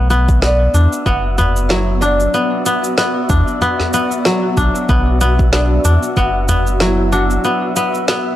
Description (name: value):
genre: organic downtempo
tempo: 94 BPM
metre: 4/4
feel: swing 57% on 16ths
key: B minor pentatonic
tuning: A4 = 440 Hz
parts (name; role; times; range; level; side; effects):
- granular cloud pad; sustained chords; 1.0-8.4 s; B3 to F#5; -24 LUFS; equal; built-in reverb, sidechain pumping
- kora; arpeggios; 0.0-8.4 s; F#3 to D4; -17 LUFS; left 2 dB; tape echo
- warm sub bass; bass; 0.0-7.4 s; F#1 to E2; -15 LUFS; equal; tube saturation
- wind-like tuned noise texture; texture; 0.2-8.4 s; E5; -29 LUFS; right 3 dB; built-in reverb
- electronic cabasa and snare drum; drums; 0.1-8.2 s; none; -20 LUFS; right 1 dB; none
- electronic kick drum; drums; 0.3-6.3 s; none; -17 LUFS; equal; none
- oud; melody; 0.4-8.4 s; D4 to F#4; -22 LUFS; right 1 dB; tape echo
- udu; percussion; 1.4-6.6 s; none; -20 LUFS; equal; none
room: small room ambience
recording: dry, gritty hardware recording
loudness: -12 LUFS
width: side -13 dB against mid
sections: 0.0-8.4 A section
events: none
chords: 0.0 Bm